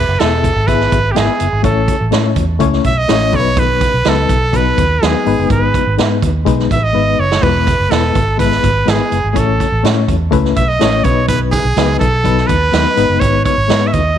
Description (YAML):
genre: uptempo 1960s-style soul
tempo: 124 BPM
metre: 4/4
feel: straight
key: E major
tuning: A4 = 440 Hz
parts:
  - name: brilliant trumpet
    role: melody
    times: 0.0-14.2 s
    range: G4 to E5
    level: -16 LUFS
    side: right 2 dB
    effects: tape echo
  - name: reed electric piano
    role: accompaniment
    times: 0.0-14.0 s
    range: F#3 to E5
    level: -17 LUFS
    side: left 11 dB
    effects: fast tremolo
  - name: vintage muted fingered electric bass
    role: bass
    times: 0.0-14.2 s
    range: E1 to A2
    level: -16 LUFS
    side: right 1 dB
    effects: none
  - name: swinging big-band drum kit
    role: drums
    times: 0.2-14.1 s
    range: hi-hat, kick drum, snare drum, splash cymbal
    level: -17 LUFS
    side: right 4 dB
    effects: none
room: light reverb, small room ambience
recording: 1960s-style stereo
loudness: -11 LUFS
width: side -9 dB against mid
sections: 0.0-14.2 A section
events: drum fill 6.9-7.4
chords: 0.0 E; 1.6 A; 3.3 B; 5.3 G#m; 7.4 E; 9.4 A; 11.0 B; 13.0 G#m